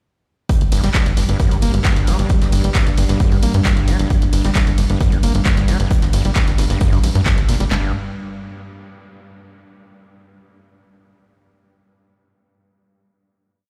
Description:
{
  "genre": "driving peak-time techno",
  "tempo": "133 BPM",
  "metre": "4/4",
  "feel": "straight",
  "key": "G harmonic minor",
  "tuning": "A4 = 439 Hz",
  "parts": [
    { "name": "analog drone", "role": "drone", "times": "0.9-7.8 s", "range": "G2", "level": "-29 LUFS", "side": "equal", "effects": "chorus, sidechain pumping" },
    { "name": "punchy analog drum machine", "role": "drums", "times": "0.5-7.8 s", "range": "handclaps, kick drum, snare drum", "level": "-19 LUFS", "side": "equal", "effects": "none" },
    { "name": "punchy analog drum machine", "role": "drums", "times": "0.5-7.7 s", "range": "handclaps, hi-hat, ride cymbal", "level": "-28 LUFS", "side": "equal", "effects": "none" },
    { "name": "vintage brush drum kit", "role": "drums", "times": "0.5-7.6 s", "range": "hi-hat, snare drum", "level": "-37 LUFS", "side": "equal", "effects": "none" },
    { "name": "tight sequencer bass", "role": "bass", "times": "0.6-7.9 s", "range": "G1 to G2", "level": "-21 LUFS", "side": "equal", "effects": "sidechain pumping" },
    { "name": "screaming distorted acid line", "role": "riff", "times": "0.7-7.9 s", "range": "F#2 to Bb3", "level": "-25 LUFS", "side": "equal", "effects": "distortion, chorus, sidechain pumping, dub echo" }
  ],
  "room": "little or no reverb",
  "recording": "played on a big sound system in a bare room, stone room reverb",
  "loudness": "-16 LUFS",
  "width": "mono",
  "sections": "0.5-7.7 drop; 7.7-9.5 final note",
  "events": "drop 0.5-7.7",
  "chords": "none"
}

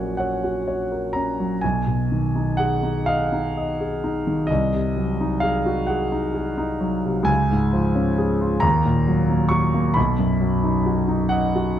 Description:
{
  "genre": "classical, romantic nocturne for solo piano",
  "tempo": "41-46 BPM (dotted quarters)",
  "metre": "12/8",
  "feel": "rubato",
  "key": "unclear",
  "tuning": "A4 = 440 Hz",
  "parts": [
    { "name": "warm concert grand piano", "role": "solo", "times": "0.0-11.8 s", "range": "A#1 to C#6", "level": "-19 LUFS", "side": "equal", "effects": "none" }
  ],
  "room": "moderate recital hall reverb, RT60 1.5 s",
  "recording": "close, detailed microphones",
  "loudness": "-19 LUFS",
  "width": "side -10 dB against mid",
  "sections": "0.0-11.8 A section",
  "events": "none",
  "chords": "0.0 F#/A#; 1.6 G#m/B; 4.5 G#7/B#; 7.3 C#; 8.6 D#m; 10.0 B"
}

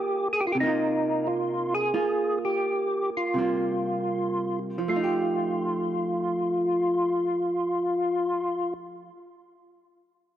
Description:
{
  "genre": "jazz",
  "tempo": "77-90 BPM",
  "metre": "4/4",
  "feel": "swing 69% on 8ths",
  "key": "F mixolydian",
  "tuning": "A4 = 440 Hz",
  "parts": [
    { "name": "percussive tonewheel organ", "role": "melody", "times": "0.0-8.7 s", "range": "Eb4 to Ab4", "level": "-25 LUFS", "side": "equal", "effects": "slow rotary speaker, chorus vibrato, cassette tape" },
    { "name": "vintage hollow-body jazz guitar", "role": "accompaniment", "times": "0.0-9.3 s", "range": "C3 to G4", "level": "-31 LUFS", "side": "right 2 dB", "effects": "cassette tape" }
  ],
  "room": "moderate lush hall reverb, RT60 2.7 s",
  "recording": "home recording on cassette",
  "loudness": "-24 LUFS",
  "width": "side -11 dB against mid",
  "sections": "0.0-4.9 A section; 4.9-8.0 B section",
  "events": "slowing down 0.0-4.9",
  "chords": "0.0 Fmadd11/Bb; 0.6 C7sus4; 1.9 Gm7; 3.4 C7sus4; 4.9 F9"
}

